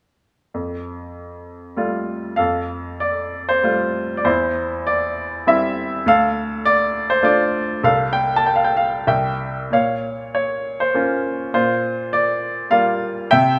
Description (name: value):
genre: classical, lyrical solo piano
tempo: 92-104 BPM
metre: 3/4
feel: rubato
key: F major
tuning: A4 = 440 Hz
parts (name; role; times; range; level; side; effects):
- bright baby grand piano; solo; 0.5-13.6 s; C2 to A5; -20 LUFS; equal; none
room: light reverb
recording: none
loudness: -20 LUFS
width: mono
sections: 0.5-2.4 A section; 2.4-13.6 B section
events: none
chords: 0.5 Fadd9; 4.3 C/E; 6.1 Dm; 7.8 Fadd9/C; 9.1 C; 9.7 Bbm; 11.5 Gm7/Bb